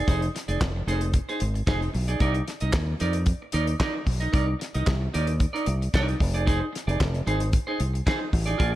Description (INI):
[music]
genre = disco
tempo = 113 BPM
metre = 4/4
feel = straight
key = F dorian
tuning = A4 = 440 Hz
[part]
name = clean electric guitar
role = accompaniment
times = 0.0-8.8 s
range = Eb4 to Eb5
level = -29 LUFS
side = right 2 dB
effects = none
[part]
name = fingered electric bass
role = bass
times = 0.1-8.8 s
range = F1 to F2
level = -26 LUFS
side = equal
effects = none
[part]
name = damped 70s drum kit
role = drums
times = 0.1-8.7 s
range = handclaps, hi-hat, kick drum, snare drum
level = -26 LUFS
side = equal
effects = gated reverb
[sound]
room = small room ambience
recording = none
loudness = -23 LUFS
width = side -15 dB against mid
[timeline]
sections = 0.0-8.8 A section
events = none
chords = 0.0 Fm7; 2.2 Cm9; 6.2 Fm7